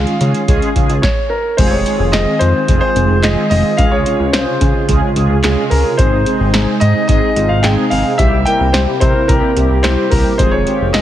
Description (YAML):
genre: synth-pop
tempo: 109 BPM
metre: 4/4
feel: straight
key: F minor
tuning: A4 = 441 Hz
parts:
  - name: warm grand piano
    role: melody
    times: 0.0-11.0 s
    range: Bb4 to G5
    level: -17 LUFS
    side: left 1 dB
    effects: tape echo
  - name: mellow synth brass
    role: accompaniment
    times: 0.0-11.0 s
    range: G3 to Bb4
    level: -18 LUFS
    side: right 1 dB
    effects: chorus
  - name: brassy analog pad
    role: sustained chords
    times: 0.0-11.0 s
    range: C3 to F4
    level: -22 LUFS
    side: right 1 dB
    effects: chorus, phaser
  - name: chorused synth bass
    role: bass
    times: 0.0-11.0 s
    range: F1 to Db3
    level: -16 LUFS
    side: equal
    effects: none
  - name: electro analog drum machine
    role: drums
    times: 0.1-11.0 s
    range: crash cymbal, handclaps, hi-hat, kick drum, snare drum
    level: -16 LUFS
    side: equal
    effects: none
room: moderate scoring stage reverb, RT60 1.9 s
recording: heavily compressed radio sound, multiband compression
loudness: -11 LUFS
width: side -12 dB against mid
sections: 0.0-1.6 A section; 1.6-11.0 B section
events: stop 1.0-1.6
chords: 0.0 Dbadd9; 1.6 Fm7; 3.8 Dbmaj7; 6.0 Ab; 8.2 C7; 10.4 Fm7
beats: 0.48 1.03 | 1.58 2.13 2.69 3.24 | 3.79 4.34 4.89 5.44 | 5.99 6.54 7.09 7.64 | 8.19 8.74 9.29 9.84 | 10.39 10.94